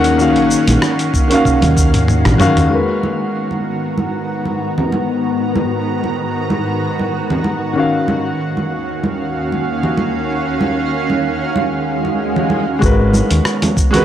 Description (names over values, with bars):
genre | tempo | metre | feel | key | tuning
sunset chillout | 95 BPM | 4/4 | swing 54% on 16ths | G# dorian | A4 = 439 Hz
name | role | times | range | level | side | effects
warm grand piano | accompaniment | 0.0-14.0 s | D#3 to F#5 | -17 LUFS | left 1 dB | auto-pan, vintage 12-bit sampler grit, tape echo
shimmering ambient pad | sustained chords | 0.0-14.0 s | D#2 to A#5 | -19 LUFS | right 1 dB | chorus, built-in reverb
woody fretless electric bass | bass | 0.0-2.7, 12.8-13.4 s | G#1 to F#2 | -15 LUFS | equal | none
dusty soul sampler-style drum kit | drums | 0.0-2.7, 12.8-14.0 s | hi-hat, rim click, shaker, toms | -19 LUFS | equal | low-pass filter on perc, studio reverb, low-pass filter on hats, low-pass filter on snare, low-pass filter on toms
congas | percussion | 0.7-14.0 s | none | -20 LUFS | right 2 dB | none
electronic kick drum | drums | 1.1-1.9, 12.8-13.9 s | none | -16 LUFS | equal | studio reverb
swell | sound effects | 11.8-12.8 s | none | -22 LUFS | equal | none
room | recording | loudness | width
digital ambience | dry, gritty hardware recording, transformer saturation | -14 LUFS | side -10 dB against mid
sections
0.0-2.7 A section; 2.7-12.8 B section; 12.8-14.0 A section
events
drum fill 1.4-2.7; swell 11.8-12.8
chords
0.0 D#m9; 2.7 G#m9; 7.8 D#m9; 12.8 G#m9